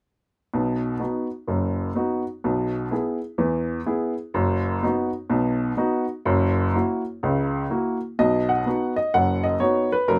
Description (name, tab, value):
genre	jazz, stride piano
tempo	125 BPM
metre	4/4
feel	swing 64% on 8ths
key	B major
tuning	A4 = 441 Hz
part	clear upright piano	solo	0.5-10.2 s	F#1 to F#5	-24 LUFS	equal	none
room	moderate booth ambience, RT60 0.2 s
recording	none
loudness	-24 LUFS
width	mono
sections	0.5-8.2 A section; 8.2-10.2 B section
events	none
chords	0.5 B; 2.4 E/B; 4.3 B/F#; 6.3 F#7; 8.2 B